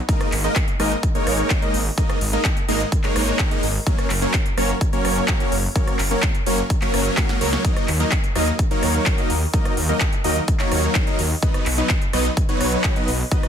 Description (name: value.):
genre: EDM, festival progressive house.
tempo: 127 BPM.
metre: 4/4.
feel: straight.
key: F# major.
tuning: A4 = 440 Hz.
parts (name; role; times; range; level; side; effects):
supersaw chords; riff; 0.1-13.5 s; F#3 to F#5; -22 LUFS; equal; sidechain pumping, ping-pong delay.
big-room dance drum kit; drums; 0.1-13.5 s; handclaps, hi-hat, rim click, snare drum; -26 LUFS; equal; none.
electronic kick drum; drums; 0.1-13.4 s; none; -21 LUFS; equal; none.
detuned saw bass; bass; 0.3-13.2 s; F#1 to D#2; -23 LUFS; equal; sidechain pumping.
room: little or no reverb.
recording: dense, heavily limited modern master.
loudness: -18 LUFS.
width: side -8 dB against mid.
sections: 0.0-13.5 A section.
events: drum fill 7.2-7.6.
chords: 0.1 G#sus2; 3.9 F#; 7.6 D#m; 11.4 B.